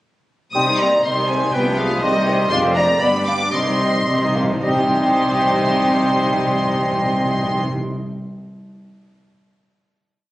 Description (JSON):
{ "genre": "quick classical-period movement for symphony orchestra", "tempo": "106-124 BPM", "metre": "2/4", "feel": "straight", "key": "C minor", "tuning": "A4 = 441 Hz", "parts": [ { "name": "warm studio violin section", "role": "melody", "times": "0.5-7.6 s", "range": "Eb5 to Eb6", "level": "-23 LUFS", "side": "equal", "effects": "none" }, { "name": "warm bassoon", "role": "accompaniment", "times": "0.5-7.6 s", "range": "F3 to Bb3", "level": "-28 LUFS", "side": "equal", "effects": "none" }, { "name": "warm studio viola section", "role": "accompaniment", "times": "0.5-7.6 s", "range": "D3 to Eb4", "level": "-26 LUFS", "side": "equal", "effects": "none" }, { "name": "dark studio double bass section", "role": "bass", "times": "0.5-7.6 s", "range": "F1 to C2", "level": "-28 LUFS", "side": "equal", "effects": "none" }, { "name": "warm symphonic cello section", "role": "bass", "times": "0.5-7.6 s", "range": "F2 to C3", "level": "-27 LUFS", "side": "right 1 dB", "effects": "none" }, { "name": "clear oboe", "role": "second line", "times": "0.6-7.6 s", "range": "B4 to Eb5", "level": "-26 LUFS", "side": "equal", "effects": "none" }, { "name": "dark studio violin section", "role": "second line", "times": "0.6-7.6 s", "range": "B3 to C5", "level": "-27 LUFS", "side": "left 1 dB", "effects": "none" }, { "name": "mellow hollow concert flute", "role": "second line", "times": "0.6-7.6 s", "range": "G4 to G5", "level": "-21 LUFS", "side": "equal", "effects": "none" }, { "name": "warm French horn section", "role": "sustained chords", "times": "0.6-7.6 s", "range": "Eb3 to Eb4", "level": "-26 LUFS", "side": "equal", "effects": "none" }, { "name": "timpani", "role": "percussion", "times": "3.5-7.8 s", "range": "C3", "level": "-27 LUFS", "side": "equal", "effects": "none" } ], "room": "wet recital hall reverb, RT60 1.4 s", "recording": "recorded on a phone in the room, studio reverb, compression", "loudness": "-16 LUFS", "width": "side -16 dB against mid", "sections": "0.5-4.6 A section; 4.6-6.8 final chord", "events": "slowing down 2.0-4.6; timpani fill 3.5-4.6", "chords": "0.5 Cm; 1.5 G7/C; 2.0 Cm; 2.5 Dm7b5/F; 3.0 G; 3.5 Cm", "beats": "| 0.55 1.04 | 1.53 2.02 | 2.51 3.01 | 3.53 4.07 | 4.63 5.18 | 5.73 6.28" }